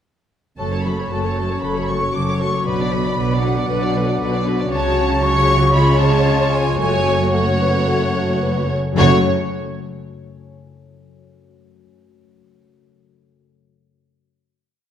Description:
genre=classical, dramatic, fast romantic movement for symphony orchestra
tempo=108-118 BPM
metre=4/4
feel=straight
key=F# minor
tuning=A4 = 439 Hz
part: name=warm symphonic violin section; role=melody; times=0.6-9.3 s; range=A4 to D5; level=-24 LUFS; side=left 3 dB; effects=none
part: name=clear clarinet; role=second line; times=0.6-9.2 s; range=E#4 to F#4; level=-29 LUFS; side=equal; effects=none
part: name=mellow cor anglais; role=second line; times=0.6-9.2 s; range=C#5 to D5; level=-27 LUFS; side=right 3 dB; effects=none
part: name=mellow hollow concert flute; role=second line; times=0.6-9.3 s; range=F#5 to D6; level=-26 LUFS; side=left 1 dB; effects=none
part: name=rich symphonic violin section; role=second line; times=0.6-9.3 s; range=C#5 to D6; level=-28 LUFS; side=left 2 dB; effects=none
part: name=dark bassoon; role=accompaniment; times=0.6-9.2 s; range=F#3 to C#4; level=-27 LUFS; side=right 2 dB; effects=none
part: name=warm symphonic viola section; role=accompaniment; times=0.6-9.3 s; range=D3 to A4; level=-28 LUFS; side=equal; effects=none
part: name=mellow French horn section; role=sustained chords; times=0.6-9.2 s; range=F#3 to F#4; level=-28 LUFS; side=left 4 dB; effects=none
part: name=concert harp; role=arpeggios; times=0.6-11.2 s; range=F#2 to C#5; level=-25 LUFS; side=left 6 dB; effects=none
part: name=rich symphonic double bass section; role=bass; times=0.6-9.3 s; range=F#1 to C#2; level=-23 LUFS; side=right 3 dB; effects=none
part: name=warm symphonic cello section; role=bass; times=0.6-9.3 s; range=F#2 to C#3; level=-22 LUFS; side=right 2 dB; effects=none
room=wet concert hall reverb, RT60 1.7 s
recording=none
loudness=-15 LUFS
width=side -9 dB against mid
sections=0.6-9.0 A section; 9.0-11.1 final chord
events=none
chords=0.6 F#m; 2.7 Bm; 4.7 F#m/C#; 5.7 C#; 6.8 F#m

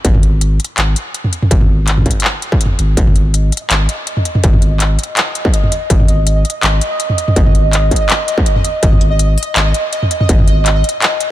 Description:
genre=half-time drum and bass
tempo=164 BPM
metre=4/4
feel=swing 54% on 16ths, half-time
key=unclear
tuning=A4 = 440 Hz
part: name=saturated sub bass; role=bass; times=0.0-10.8 s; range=G#1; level=-12 LUFS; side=equal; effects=none
part: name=electronic kick drum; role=drums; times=0.0-10.4 s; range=none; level=-13 LUFS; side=equal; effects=distortion
part: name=industrial drum kit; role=drums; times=0.0-11.3 s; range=handclaps, hi-hat, toms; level=-16 LUFS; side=equal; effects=none
part: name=pulsing gated texture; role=texture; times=3.4-11.3 s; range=D#5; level=-20 LUFS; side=right 2 dB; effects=chorus, built-in reverb
room=little or no reverb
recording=none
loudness=-11 LUFS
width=side -14 dB against mid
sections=0.0-11.3 A section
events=none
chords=0.0 G#5

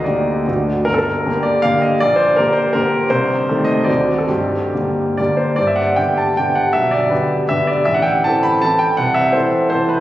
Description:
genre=classical, romantic triple-time dance for piano with dotted rhythms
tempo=128-178 BPM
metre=3/4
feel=rubato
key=G minor, G major from 5.6 s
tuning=A4 = 441 Hz
part: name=clear concert grand piano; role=solo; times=0.0-10.0 s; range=G1 to B5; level=-14 LUFS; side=equal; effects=none
room=wet church reverb, RT60 3.1 s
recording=recorded on a phone in the room, studio reverb, compression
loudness=-14 LUFS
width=side -14 dB against mid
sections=0.0-5.6 A section; 5.6-10.0 B section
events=none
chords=0.5 D; 0.9 Gm; 2.0 Gm/Bb; 3.1 Adim/C; 3.9 D7; 4.3 Gm; 5.6 G; 6.7 G/B; 7.9 Am; 9.0 Am/C

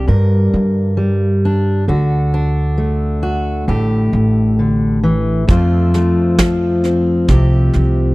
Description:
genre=acoustic folk duo or small band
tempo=67 BPM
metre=4/4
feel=straight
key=unclear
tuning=A4 = 439 Hz
part: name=fingerpicked steel-string acoustic guitar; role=accompaniment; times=0.0-8.1 s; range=F2 to Bb4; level=-15 LUFS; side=left 1 dB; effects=none
part: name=upright bass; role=bass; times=0.0-8.1 s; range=A1 to G2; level=-16 LUFS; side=right 1 dB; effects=none
part: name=soft brush drum kit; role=drums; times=5.5-7.8 s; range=kick drum, snare drum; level=-16 LUFS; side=right 1 dB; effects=none
room=small room ambience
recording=dry, close 1970s-style studio recording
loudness=-12 LUFS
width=side -21 dB against mid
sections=0.0-8.1 A section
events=none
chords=0.0 Csus2 (rootless); 1.9 D; 5.5 F

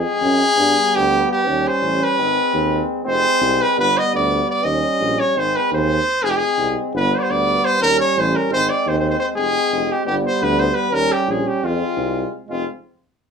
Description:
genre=balkan folk, Balkan brass band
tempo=343 BPM (eighths)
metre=9/8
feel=straight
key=unclear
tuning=A4 = 436 Hz
part: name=clear trumpet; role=melody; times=0.0-12.7 s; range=F4 to Eb5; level=-18 LUFS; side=equal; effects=none
part: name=clear euphonium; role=accompaniment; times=0.0-12.7 s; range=G3 to Ab3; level=-26 LUFS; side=right 3 dB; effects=none
part: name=clear trombone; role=accompaniment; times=0.0-12.7 s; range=B3 to Db4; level=-25 LUFS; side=left 3 dB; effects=none
part: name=warm tuba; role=bass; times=0.0-12.7 s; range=F1 to G2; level=-24 LUFS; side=right 1 dB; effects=none
room=wet small room reverb, RT60 0.5 s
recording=band playing live in one room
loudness=-16 LUFS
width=side -6 dB against mid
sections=0.0-12.5 A section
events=speeding up 0.0-13.3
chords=0.0 Fm (rootless); 0.6 G; 1.5 Eb7; 2.2 Ab; 3.1 Fm; 3.8 G; 4.6 Eb7; 5.3 Ab; 6.2 Fm; 6.9 G; 7.8 Eb7; 8.5 Ab; 9.4 Fm; 10.1 G; 10.9 Eb7; 11.6 Fm

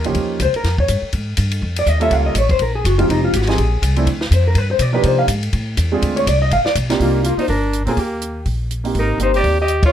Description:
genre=jazz, small-group swing and bop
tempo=246 BPM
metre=4/4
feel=swing 58% on 8ths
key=C minor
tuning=A4 = 440 Hz
part: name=hollow-body jazz guitar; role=melody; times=0.0-9.9 s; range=Eb4 to F5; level=-19 LUFS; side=left 2 dB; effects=none
part: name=warm concert grand piano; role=accompaniment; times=0.0-9.6 s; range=C3 to Bb4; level=-21 LUFS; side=right 5 dB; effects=none
part: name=upright bass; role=bass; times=0.0-9.9 s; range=F1 to C3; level=-18 LUFS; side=equal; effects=none
part: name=compact cocktail drum kit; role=drums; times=0.0-9.9 s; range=hi-hat, kick drum, ride cymbal, snare drum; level=-23 LUFS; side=equal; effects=none
part: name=clear trumpet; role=second line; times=7.0-9.9 s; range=Bb3 to G4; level=-22 LUFS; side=right 1 dB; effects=none
room=little or no reverb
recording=close, detailed microphones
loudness=-15 LUFS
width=side -10 dB against mid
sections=0.0-7.0 A section; 7.0-9.9 B section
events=hollow-body jazz guitar solo 0.0-7.0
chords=0.2 Eb9; 1.1 Absus2; 2.1 Gm7b5; 2.6 F#add9; 3.1 Fm9; 4.1 Dm; 4.6 G7; 5.0 Cm11; 5.5 A5; 6.0 Dm7b5; 6.5 G7b13; 7.0 Cm11; 8.0 Eb; 8.9 Abmaj9

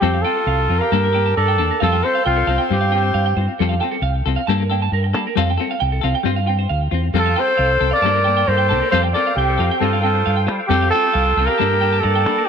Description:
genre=highlife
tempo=135 BPM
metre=4/4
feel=straight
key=F major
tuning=A4 = 440 Hz
part: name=dark trumpet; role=melody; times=0.0-3.3, 7.2-12.5 s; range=F4 to D5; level=-18 LUFS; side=right 1 dB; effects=tape echo
part: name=raspy alto saxophone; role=second line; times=0.0-3.4, 7.2-12.5 s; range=C4 to Bb4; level=-26 LUFS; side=left 12 dB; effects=none
part: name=clean electric guitar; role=accompaniment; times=0.0-12.4 s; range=G3 to A4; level=-24 LUFS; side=left 14 dB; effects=tremolo
part: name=semi-hollow electric guitar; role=arpeggios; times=0.0-12.5 s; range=A4 to A5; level=-24 LUFS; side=right 10 dB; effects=tape echo
part: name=fingered electric bass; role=bass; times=0.0-12.4 s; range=C2 to G3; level=-20 LUFS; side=equal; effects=none
part: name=percussive tonewheel organ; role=sustained chords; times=7.1-12.5 s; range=Bb3 to A5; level=-29 LUFS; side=equal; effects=slow rotary speaker, overdrive, chorus vibrato
room=light reverb, small room ambience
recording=1960s-style stereo with parts hard left and right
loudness=-15 LUFS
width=side -7 dB against mid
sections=0.0-12.5 A section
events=none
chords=0.0 Fadd9; 0.9 Gmadd9; 1.8 Fadd9; 2.7 Csus4/G; 3.6 Fadd9; 4.5 Gmadd9; 5.4 Fadd9; 6.3 Csus4/G; 7.1 Fadd9; 8.0 Gmadd9; 8.9 Fadd9; 9.8 Csus4/G; 10.7 Fadd9; 11.6 Gmadd9

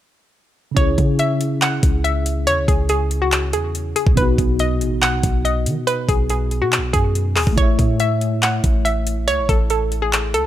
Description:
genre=hip hop, trap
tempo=141 BPM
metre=4/4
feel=half-time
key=C# minor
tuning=A4 = 441 Hz
part: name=mellow tine electric piano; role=accompaniment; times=0.7-10.5 s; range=B2 to E5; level=-24 LUFS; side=left 1 dB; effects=medium stereo tremolo
part: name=hollow square pluck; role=melody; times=0.8-10.5 s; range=F#4 to F#5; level=-21 LUFS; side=equal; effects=chorus, tape echo
part: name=warm 808-style bass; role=bass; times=0.8-10.5 s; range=A1 to D#3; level=-21 LUFS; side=equal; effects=none
part: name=trap drum kit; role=drums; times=0.8-10.4 s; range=handclaps, hi-hat, kick drum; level=-19 LUFS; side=equal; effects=none
room=digital ambience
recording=none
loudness=-16 LUFS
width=side -12 dB against mid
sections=0.8-10.5 A section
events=none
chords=0.8 C#m; 4.2 B; 7.6 A

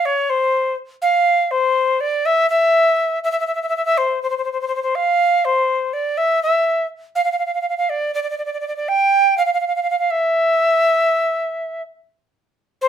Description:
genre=calypso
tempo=122 BPM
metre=4/4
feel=swing 54% on 16ths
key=unclear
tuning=A4 = 440 Hz
part: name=alto recorder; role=solo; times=0.0-12.9 s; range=C5 to G5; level=-16 LUFS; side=equal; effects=none
room=moderate small room reverb, RT60 0.5 s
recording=minimal, uncompressed stereo recording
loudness=-16 LUFS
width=side -9 dB against mid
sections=0.0-12.3 A section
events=none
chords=none

